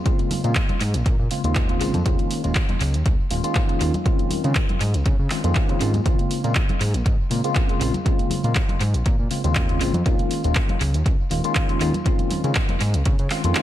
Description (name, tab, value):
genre	filtered disco house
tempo	120 BPM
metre	4/4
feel	swing 54% on 16ths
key	Bb minor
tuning	A4 = 440 Hz
part	tine electric piano	accompaniment	0.1-13.6 s	Db3 to F4	-26 LUFS	left 1 dB	fast stereo tremolo, phaser, vintage 12-bit sampler grit, sidechain pumping, low-pass filter, tape echo
part	electronic kick drum	drums	0.1-13.2 s	none	-21 LUFS	equal	none
part	punchy analog drum machine	drums	0.1-13.6 s	handclaps, hi-hat	-28 LUFS	right 1 dB	tape echo
part	tambourine and congas	percussion	0.1-13.6 s	none	-32 LUFS	left 1 dB	none
part	fat analog bass	bass	0.4-13.5 s	Eb1 to Db3	-22 LUFS	equal	sidechain pumping, low-pass filter
room	little or no reverb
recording	echo-heavy mix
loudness	-19 LUFS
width	side -13 dB against mid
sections	0.0-13.6 A section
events	none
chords	0.0 Bbm7; 2.1 Eb7sus4; 4.1 Dbmaj7; 6.1 Bbm7; 10.1 Eb7sus4; 12.1 Dbmaj7